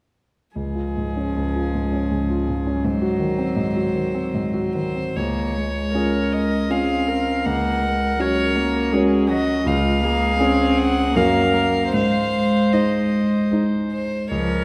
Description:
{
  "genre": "classical, slow romantic movement for piano quartet",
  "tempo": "71-84 BPM",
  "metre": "3/4",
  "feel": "rubato",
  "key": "Db major",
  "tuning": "A4 = 443 Hz",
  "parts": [
    { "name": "warm violin", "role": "melody", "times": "0.6-14.6 s", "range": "Ab4 to Gb5", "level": "-28 LUFS", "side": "equal", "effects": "none" },
    { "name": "rich cello", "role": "second line", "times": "0.6-14.6 s", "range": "F3 to C4", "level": "-27 LUFS", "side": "equal", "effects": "none" },
    { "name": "warm concert grand piano", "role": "accompaniment", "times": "0.6-14.6 s", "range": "Db2 to C5", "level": "-24 LUFS", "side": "equal", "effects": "none" },
    { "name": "dark viola", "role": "accompaniment", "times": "5.9-14.6 s", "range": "F4 to C5", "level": "-29 LUFS", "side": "equal", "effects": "none" }
  ],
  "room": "wet concert hall reverb, RT60 1.9 s",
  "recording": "none",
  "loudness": "-21 LUFS",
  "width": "mono",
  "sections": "0.6-5.2 A section; 5.2-14.6 B section",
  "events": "none",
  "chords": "0.6 Db; 2.8 Ab7; 5.2 Db; 7.5 Gb/Db; 9.7 Db; 11.2 Gbmaj7; 11.9 Ab",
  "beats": "| 0.56 1.36 2.12 | 2.85 3.57 4.34 | 5.17 5.95 6.71 | 7.46 8.20 8.94 | 9.67 10.41 11.16 | 11.94 12.74 13.54 | 14.33"
}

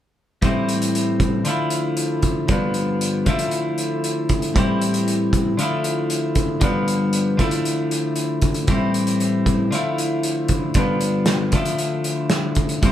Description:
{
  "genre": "indie rock",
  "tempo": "116 BPM",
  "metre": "4/4",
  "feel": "straight",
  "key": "unclear",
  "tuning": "A4 = 443 Hz",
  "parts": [
    { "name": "twelve-string electric guitar", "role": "riff", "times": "0.4-12.9 s", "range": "G2 to E4", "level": "-20 LUFS", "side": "left 1 dB", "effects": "none" },
    { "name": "loose indie drum kit", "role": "drums", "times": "0.4-12.9 s", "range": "hi-hat, kick drum, snare drum", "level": "-22 LUFS", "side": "right 1 dB", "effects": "none" }
  ],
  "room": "moderate studio ambience, RT60 0.4 s",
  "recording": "band playing live in one room",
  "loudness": "-18 LUFS",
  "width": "side -11 dB against mid",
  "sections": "0.4-12.9 A section",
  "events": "none",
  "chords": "0.4 Am7; 1.5 Dmadd9; 2.5 G7; 3.3 Dmadd9; 4.6 Am7; 5.6 Dmadd9; 6.6 G7; 7.4 Dmadd9; 8.7 Am7; 9.7 Dmadd9; 10.8 G7; 11.5 Dmadd9",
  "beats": "| 0.43 0.95 1.46 1.98 | 2.49 3.01 3.53 4.04 | 4.56 5.07 5.59 6.11 | 6.62 7.14 7.66 8.17 | 8.69 9.21 9.73 10.25 | 10.76 11.28 11.80 12.32 | 12.84"
}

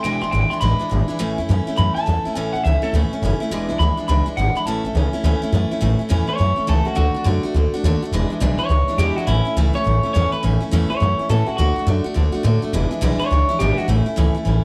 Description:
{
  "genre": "rockabilly",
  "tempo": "208 BPM",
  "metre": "4/4",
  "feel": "swing 63% on 8ths",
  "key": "A major",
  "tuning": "A4 = 442 Hz",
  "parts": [
    { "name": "electric guitar through a small old amp", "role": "melody", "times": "0.0-13.9 s", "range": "E4 to C6", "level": "-25 LUFS", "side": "equal", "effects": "tape echo" },
    { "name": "picked steel-string acoustic guitar", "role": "accompaniment", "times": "0.0-14.6 s", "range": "E2 to F#4", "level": "-25 LUFS", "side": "equal", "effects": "none" },
    { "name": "upright bass", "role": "bass", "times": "0.0-14.6 s", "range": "E1 to A2", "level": "-21 LUFS", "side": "equal", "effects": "none" }
  ],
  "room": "light reverb",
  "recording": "none",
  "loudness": "-19 LUFS",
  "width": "mono",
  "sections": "0.0-5.8 A section; 5.8-14.6 B section",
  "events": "clean electric guitar solo 0.0-5.8",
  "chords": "0.0 E7; 1.2 A; 3.5 E7; 4.7 A; 7.0 D; 8.1 E7; 9.3 A; 11.6 D; 12.7 E7; 13.9 A",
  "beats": "| 0.04 0.33 0.62 0.91 | 1.20 1.49 1.78 2.07 | 2.35 2.64 2.93 3.22 | 3.51 3.80 4.09 4.38 | 4.67 4.95 5.24 5.53 | 5.82 6.11 6.40 6.68 | 6.97 7.26 7.55 7.84 | 8.13 8.42 8.70 8.99 | 9.28 9.57 9.86 10.14 | 10.43 10.72 11.01 11.29 | 11.58 11.87 12.16 12.45 | 12.73 13.02 13.31 13.60 | 13.88 14.17 14.46"
}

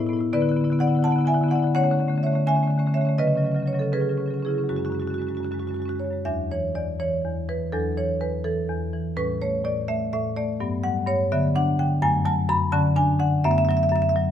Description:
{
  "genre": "classical, contemporary piece for solo marimba",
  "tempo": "83 BPM (dotted quarters)",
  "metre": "6/8",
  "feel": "rubato",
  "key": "F# minor",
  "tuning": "A4 = 440 Hz",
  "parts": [
    { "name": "marimba with medium hard mallets", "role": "solo", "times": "0.0-14.3 s", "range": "E2 to B5", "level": "-21 LUFS", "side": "equal", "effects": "none" }
  ],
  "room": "moderate stone room reverb, RT60 1.4 s",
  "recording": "none",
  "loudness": "-21 LUFS",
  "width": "side -9 dB against mid",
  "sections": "0.0-6.3 A section; 6.3-14.3 B section",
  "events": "none",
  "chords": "0.3 D69; 1.7 Amaj7/D; 3.2 C#7sus4; 4.7 F#sus2; 6.3 Dadd9/E; 9.2 A7; 10.6 Gmaj7; 11.3 D6; 12.0 F#m; 12.7 Dmaj7; 13.4 F#m7",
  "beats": "| 0.32 1.02 | 1.74 2.47 | 3.18 3.92 | 4.70 5.47 | 6.25 6.99 | 7.73 8.45 | 9.18 9.89 | 10.60 11.31 | 12.02 12.73 | 13.44 14.16"
}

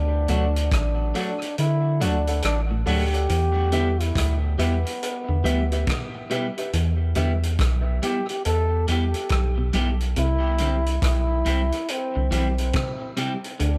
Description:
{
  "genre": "dub reggae",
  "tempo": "70 BPM",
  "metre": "4/4",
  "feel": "swing 64% on 16ths",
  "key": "E minor",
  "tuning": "A4 = 440 Hz",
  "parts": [
    { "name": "mellow trombone", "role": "melody", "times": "0.0-13.8 s", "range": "B3 to A4", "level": "-31 LUFS", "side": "equal", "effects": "dub echo" },
    { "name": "electric guitar at the edge of break-up", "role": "arpeggios", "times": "0.0-13.8 s", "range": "G2 to E3", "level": "-35 LUFS", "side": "equal", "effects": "dub echo" },
    { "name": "soft dub sub bass", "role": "bass", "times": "0.0-13.8 s", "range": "A1 to D3", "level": "-25 LUFS", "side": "equal", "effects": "none" },
    { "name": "clean electric guitar", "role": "accompaniment", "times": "0.3-13.3 s", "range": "F#3 to G4", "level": "-33 LUFS", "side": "equal", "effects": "dub echo" },
    { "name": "warm upright piano", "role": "stabs", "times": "0.3-7.3 s", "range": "G4 to F#5", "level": "-36 LUFS", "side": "equal", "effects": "dub echo" },
    { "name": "vintage drum kit", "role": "drums", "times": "0.3-13.8 s", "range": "hi-hat, kick drum, rim click", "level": "-31 LUFS", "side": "equal", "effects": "none" }
  ],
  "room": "little or no reverb",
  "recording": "none",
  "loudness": "-23 LUFS",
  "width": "mono",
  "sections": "0.0-13.8 A section",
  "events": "kick muted 1.6-3.3",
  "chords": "0.0 D; 3.3 Em; 10.2 C",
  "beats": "0.71 1.57 2.43 | 3.29 4.15 5.01 5.87 | 6.73 7.59 8.45 9.31 | 10.16 11.02 11.88 12.74 | 13.60"
}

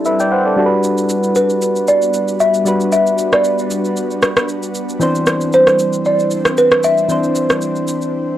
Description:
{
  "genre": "amapiano",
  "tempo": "115 BPM",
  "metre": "4/4",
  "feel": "swing 55% on 16ths",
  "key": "unclear",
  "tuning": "A4 = 437 Hz",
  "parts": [
    { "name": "soft electric-piano-like synth keys", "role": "accompaniment", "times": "0.0-8.4 s", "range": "E3 to G5", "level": "-17 LUFS", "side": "equal", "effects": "chorus, low-pass filter, cassette tape" },
    { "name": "ethereal airy pad", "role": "sustained chords", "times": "0.0-8.4 s", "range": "G3 to C5", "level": "-23 LUFS", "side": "equal", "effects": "ensemble chorus, built-in reverb, low-pass filter, cassette tape" },
    { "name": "electronic shaker and rim click", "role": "drums", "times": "0.1-8.1 s", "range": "none", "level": "-18 LUFS", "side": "equal", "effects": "cassette tape" },
    { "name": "folk marimba with soft mallets", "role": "melody", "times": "1.4-8.4 s", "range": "B4 to E5", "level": "-14 LUFS", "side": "equal", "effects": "low-pass filter, cassette tape, analog delay" }
  ],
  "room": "moderate studio reverb, RT60 0.7 s",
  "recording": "home recording on cassette",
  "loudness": "-12 LUFS",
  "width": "side -12 dB against mid",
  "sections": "0.0-8.4 A section",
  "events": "silent gap 0.3-0.8",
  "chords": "0.0 D9sus4; 0.6 Gmaj7; 5.0 Cadd9",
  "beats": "0.31 | 0.83 1.36 1.88 2.40 | 2.92 3.44 3.96 4.49 | 5.01 5.53 6.05 6.57 | 7.09 7.62 8.14"
}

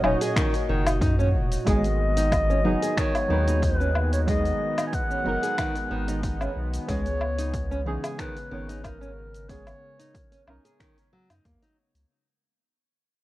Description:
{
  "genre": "organic downtempo",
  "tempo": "92 BPM",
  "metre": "4/4",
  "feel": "swing 53% on 16ths",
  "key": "unclear",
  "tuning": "A4 = 439 Hz",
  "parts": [
    { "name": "dark clarinet", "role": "melody", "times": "0.0-10.5 s", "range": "A#4 to G#5", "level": "-30 LUFS", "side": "left 1 dB", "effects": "vintage 12-bit sampler grit, digital delay" },
    { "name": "deep mellow chord stab", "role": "accompaniment", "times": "0.0-12.1 s", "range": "E3 to D#5", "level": "-31 LUFS", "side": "right 1 dB", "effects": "chorus, phaser, sidechain pumping, ping-pong delay" },
    { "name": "warm analog pad", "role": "sustained chords", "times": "0.0-12.1 s", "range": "A#2 to D#5", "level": "-33 LUFS", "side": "equal", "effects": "chorus, sidechain pumping" },
    { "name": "nylon-string guitar", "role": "arpeggios", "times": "0.0-11.8 s", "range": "D#3 to G#4", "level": "-31 LUFS", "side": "right 1 dB", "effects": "ping-pong delay" },
    { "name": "warm sub bass", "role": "bass", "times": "0.0-12.1 s", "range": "E1 to F#2", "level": "-26 LUFS", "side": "equal", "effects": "none" },
    { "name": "deep house drum kit", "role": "drums", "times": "0.0-12.1 s", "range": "finger snaps, hi-hat, shaker, woodblock", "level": "-31 LUFS", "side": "left 1 dB", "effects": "overdrive" },
    { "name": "electronic kick drum", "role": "drums", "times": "0.4-11.6 s", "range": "none", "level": "-28 LUFS", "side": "equal", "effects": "overdrive" }
  ],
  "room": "light reverb, digital ambience",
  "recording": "worn, warbling old tape, cassette tape, warbly pitch drift",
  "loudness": "-22 LUFS",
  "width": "side -16 dB against mid",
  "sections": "0.0-12.1 A section",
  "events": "fade-out 1.7-12.1",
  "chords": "0.0 F#7; 1.7 G#m7; 6.9 C#m7",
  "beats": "0.36 1.02 | 1.67 2.32 2.97 3.62 | 4.28 4.93 5.58 6.23 | 6.88 7.54 8.19 8.84 | 9.49 10.15 10.80 11.45"
}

